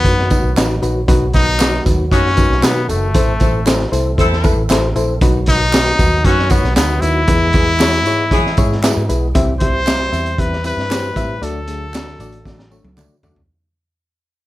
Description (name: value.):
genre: uptempo 1960s-style soul.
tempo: 116 BPM.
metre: 4/4.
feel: straight.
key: unclear.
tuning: A4 = 440 Hz.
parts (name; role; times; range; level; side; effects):
clear trumpet; melody; 0.0-13.0 s; A3 to C5; -18 LUFS; left 2 dB; none.
percussive tonewheel organ; sustained chords; 0.0-13.5 s; D3 to A4; -28 LUFS; right 1 dB; none.
vintage muted picked electric bass; bass; 0.0-13.5 s; F#1 to E3; -19 LUFS; equal; none.
crunchy breakbeat drum kit; drums; 0.0-13.5 s; hi-hat, kick drum, snare drum, toms; -16 LUFS; equal; none.
reed electric piano; accompaniment; 0.1-13.4 s; A2 to E5; -21 LUFS; left 2 dB; none.
tambourine and handclaps; percussion; 0.1-13.4 s; none; -28 LUFS; right 3 dB; none.
clear saxophone section; second line; 1.3-8.7 s; B3 to A4; -22 LUFS; equal; none.
room: light reverb.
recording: none.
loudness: -12 LUFS.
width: side -16 dB against mid.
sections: 0.0-9.4 A section; 9.4-13.5 B section.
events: fade-out 9.4-13.5; drum fill 12.5-13.5.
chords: 0.0 B; 3.2 Am; 5.2 B; 7.3 E; 9.4 C; 11.4 D.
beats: 0.05 0.57 | 1.08 1.60 2.12 2.63 | 3.15 3.67 4.18 4.70 | 5.22 5.74 6.25 6.77 | 7.29 7.80 8.32 8.84 | 9.35 9.87 10.39 10.90 | 11.42 11.94 12.46 12.98.